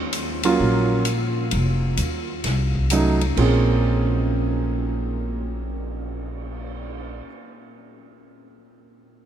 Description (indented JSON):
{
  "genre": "jazz, small-group swing and bop",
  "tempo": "130 BPM",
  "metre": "4/4",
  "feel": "swing 66% on 8ths",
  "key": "Bb minor",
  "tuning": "A4 = 440 Hz",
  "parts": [
    { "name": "upright bass", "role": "bass", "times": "0.0-7.2 s", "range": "F1 to Eb2", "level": "-23 LUFS", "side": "equal", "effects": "none" },
    { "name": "swinging big-band drum kit", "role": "drums", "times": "0.1-7.0 s", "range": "crash cymbal, cymbal swell, hi-hat, kick drum, ride cymbal, snare drum", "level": "-30 LUFS", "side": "left 1 dB", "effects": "none" },
    { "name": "warm grand piano", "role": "accompaniment", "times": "0.4-7.3 s", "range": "Bb2 to Ab4", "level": "-23 LUFS", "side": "right 3 dB", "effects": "none" }
  ],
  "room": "moderate huge ambient reverb, RT60 8.8 s",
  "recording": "in a vast, echoing space",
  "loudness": "-19 LUFS",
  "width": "side -10 dB against mid",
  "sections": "0.0-3.4 A section; 3.4-7.1 B section",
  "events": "none",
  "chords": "0.0 Bbm; 1.5 F7b9b13; 3.4 Bbm9",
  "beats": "0.14 0.60 1.06 | 1.52 1.99 2.45 2.91 | 3.37 3.83 4.30 4.76 | 5.22 5.69 6.15 6.61"
}